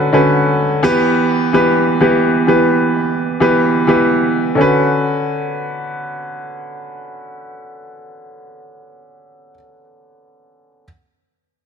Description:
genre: hip hop.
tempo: 128 BPM.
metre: 4/4.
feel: half-time.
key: B minor.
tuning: A4 = 440 Hz.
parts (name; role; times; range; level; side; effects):
warm concert grand piano; accompaniment; 0.0-10.8 s; D3 to C#5; -13 LUFS; equal; none.
room: light reverb.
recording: dense, heavily limited modern master.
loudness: -12 LUFS.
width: side -6 dB against mid.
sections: 0.0-4.6 A section; 4.6-8.3 B section.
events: none.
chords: 0.0 Bmadd9; 0.8 Em; 4.6 Bmadd9.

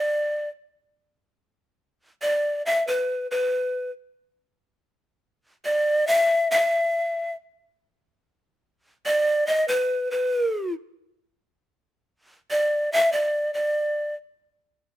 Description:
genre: andean folk.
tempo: 70 BPM.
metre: 4/4.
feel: straight.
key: unclear.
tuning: A4 = 443 Hz.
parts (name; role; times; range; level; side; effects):
breathy large pan pipes; solo; 0.0-14.1 s; B4 to E5; -21 LUFS; equal; none.
room: light reverb.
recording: minimal, uncompressed stereo recording.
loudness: -21 LUFS.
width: side -15 dB against mid.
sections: 0.0-7.8 A section; 7.8-15.0 A section.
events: none.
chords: none.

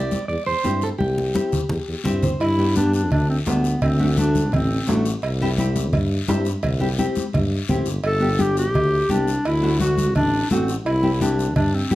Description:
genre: latin, cumbia.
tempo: 170 BPM.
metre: 4/4.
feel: straight.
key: G major.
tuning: A4 = 441 Hz.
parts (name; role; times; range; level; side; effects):
electric guitar at the edge of break-up; second line; 0.0-2.0 s; G4 to D5; -24 LUFS; right 2 dB; none.
nylon-string guitar; accompaniment; 0.0-11.9 s; A3 to E5; -24 LUFS; left 1 dB; none.
warm tuba; bass; 0.0-11.9 s; G1 to G2; -23 LUFS; equal; none.
congas; percussion; 0.1-11.9 s; none; -25 LUFS; equal; none.
guiro; percussion; 0.1-11.9 s; none; -35 LUFS; left 7 dB; none.
warm clarinet; melody; 2.4-5.1, 8.1-11.9 s; A3 to A4; -22 LUFS; equal; none.
cowbell and timbales; percussion; 2.4-11.7 s; none; -31 LUFS; right 4 dB; none.
room: moderate large studio reverb, RT60 0.8 s.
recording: none.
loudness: -18 LUFS.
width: side -16 dB against mid.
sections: 0.0-2.4 A section; 2.4-11.9 B section.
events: clean electric guitar solo 0.0-2.4; drum fill 1.0-2.4; nylon-string guitar fill 1.9-2.4.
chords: 0.0 C; 2.4 G; 3.8 D7; 5.2 C; 8.0 G; 9.4 D; 10.9 C.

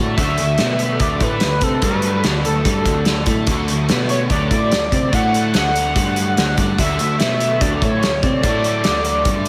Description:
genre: indie rock.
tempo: 145 BPM.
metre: 4/4.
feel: straight.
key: D major.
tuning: A4 = 440 Hz.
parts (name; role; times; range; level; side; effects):
raw garage guitar; riff; 0.0-9.5 s; D3 to C5; -27 LUFS; equal; overdrive, slapback echo.
raw garage guitar; riff; 0.0-9.5 s; D3 to F#4; -27 LUFS; equal; overdrive, ensemble chorus, slapback echo.
growling picked electric bass; bass; 0.0-9.5 s; D2 to C3; -24 LUFS; equal; overdrive.
pulse-width lead; melody; 0.2-9.5 s; A4 to F#5; -23 LUFS; equal; chorus, slapback echo, digital delay.
loose indie drum kit; drums; 0.2-9.5 s; hi-hat, kick drum, snare drum; -22 LUFS; equal; none.
room: moderate lush hall reverb, RT60 2.1 s.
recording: big arena sound.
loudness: -17 LUFS.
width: mono.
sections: 0.0-9.5 A section.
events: none.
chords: 0.0 D.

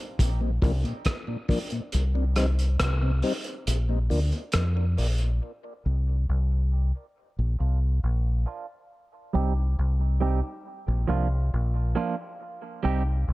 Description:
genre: dub reggae.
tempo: 69 BPM.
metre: 4/4.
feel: straight.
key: C minor.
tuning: A4 = 440 Hz.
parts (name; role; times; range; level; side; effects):
deep dub fingered electric bass; bass; 0.2-13.3 s; Bb1 to F2; -23 LUFS; equal; none.
cloth-damped thuddy drum kit; drums; 0.2-5.4 s; hi-hat, kick drum, rim click; -29 LUFS; equal; none.
mellow tonewheel organ; accompaniment; 0.4-5.3 s; Bb2 to Eb4; -32 LUFS; left 2 dB; slow rotary speaker, high-pass filter, dub echo.
clean electric guitar; accompaniment; 5.8-13.0 s; F3 to G4; -31 LUFS; right 5 dB; high-pass filter, low-pass filter, dub echo.
room: light reverb.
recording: dark, warm production.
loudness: -24 LUFS.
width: side -19 dB against mid.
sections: 0.0-5.4 A section; 5.4-13.3 B section.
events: break 0.0-5.4; kick muted 1.9-5.4; filter sweep on clean electric guitar 5.4-13.3.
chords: 0.2 Bb; 1.9 Cm; 3.7 Bb; 5.4 Cm; 7.2 Bb; 8.9 Cm; 10.6 Bb; 12.4 Cm.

